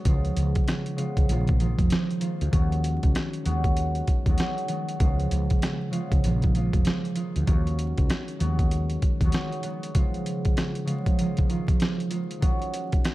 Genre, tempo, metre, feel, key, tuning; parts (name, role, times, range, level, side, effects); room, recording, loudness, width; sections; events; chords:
hip hop, boom-bap hip-hop; 97 BPM; 4/4; swing 62% on 16ths; Eb minor; A4 = 443 Hz
concert harp; accompaniment; 0.0-13.1 s; Db3 to Gb4; -28 LUFS; right 1 dB; cassette tape, high-pass filter, low-pass filter
woody fretless electric bass; bass; 0.1-9.3 s; F1 to Eb2; -26 LUFS; equal
boom bap sampler-style drum kit; drums; 0.1-13.1 s; hi-hat, kick drum, rim click, snare drum; -24 LUFS; equal
digital ambience; dark, warm production, vinyl crackle; -22 LUFS; side -17 dB against mid
0.0-13.1 A section
0.1 Db7; 1.3 Bb7sus4; 2.5 Ebm7; 3.5 Abm7/Eb; 5.0 Db7; 6.2 Bb7sus4; 7.5 Ebm7; 8.4 Abm7/Eb; 9.9 Db7; 11.2 Bb7sus4; 12.4 Ebm7